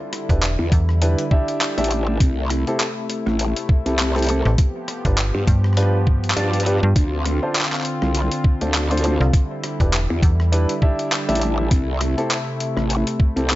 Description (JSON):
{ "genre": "glitch hop", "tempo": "101 BPM", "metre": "4/4", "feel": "swing 57% on 16ths", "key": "unclear", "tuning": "A4 = 440 Hz", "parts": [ { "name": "warm analog pad", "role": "sustained chords", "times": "0.0-13.6 s", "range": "C3 to G4", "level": "-27 LUFS", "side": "left 1 dB", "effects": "chorus, sidechain pumping" }, { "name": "boom bap sampler-style drum kit", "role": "drums", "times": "0.1-13.6 s", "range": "handclaps, hi-hat, rim click", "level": "-24 LUFS", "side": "left 1 dB", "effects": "none" }, { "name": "dark grand piano", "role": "stabs", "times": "0.3-13.6 s", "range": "C4 to E5", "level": "-25 LUFS", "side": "equal", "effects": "vintage 12-bit sampler grit, sidechain pumping, tape echo" }, { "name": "slap-like FM bass", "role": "bass", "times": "0.3-10.7 s", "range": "E1 to G2", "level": "-18 LUFS", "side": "equal", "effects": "none" }, { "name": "electronic kick drum", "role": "drums", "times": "0.3-13.3 s", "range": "none", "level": "-16 LUFS", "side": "equal", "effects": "none" }, { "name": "growl bass", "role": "bass", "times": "0.6-13.6 s", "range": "A1 to G2", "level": "-20 LUFS", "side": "equal", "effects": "chorus, overdrive" } ], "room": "digital ambience", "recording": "nothing above 7.8 kHz", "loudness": "-17 LUFS", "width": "side -16 dB against mid", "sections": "0.0-13.6 A section", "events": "none", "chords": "0.0 Em7; 2.2 C6; 4.6 G7; 7.0 Dm7; 9.3 Em7; 11.7 C6", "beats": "0.42 1.02 1.61 | 2.21 2.80 3.39 3.99 | 4.58 5.18 5.77 6.36 | 6.96 7.55 8.15 8.74 | 9.34 9.93 10.52 11.12 | 11.71 12.30 12.90 13.49" }